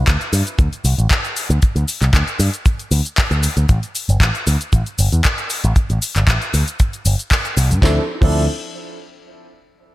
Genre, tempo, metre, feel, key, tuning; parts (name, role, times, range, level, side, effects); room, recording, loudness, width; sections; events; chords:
nu-disco, nu disco; 116 BPM; 4/4; swing 53% on 16ths; D minor; A4 = 438 Hz
picked electric bass with an envelope filter; bass; 0.0-8.5 s; G1 to G2; -16 LUFS; equal
house drum kit; drums; 0.1-8.3 s; crash cymbal, handclaps, hi-hat, shaker, snare drum; -21 LUFS; left 1 dB; overdrive, gated reverb
kick drum; drums; 0.1-8.3 s; -15 LUFS; equal
dark baby grand piano; accompaniment; 7.8-8.4 s; F3 to A4; -24 LUFS; right 1 dB; lush chorus, sidechain pumping, digital delay
small room ambience; bright 1980s-style digital production; -14 LUFS; side -17 dB against mid
0.0-7.8 A section; 7.8-9.9 B section
0.0 N.C.; 3.7 A7(no3); 7.8 Dm9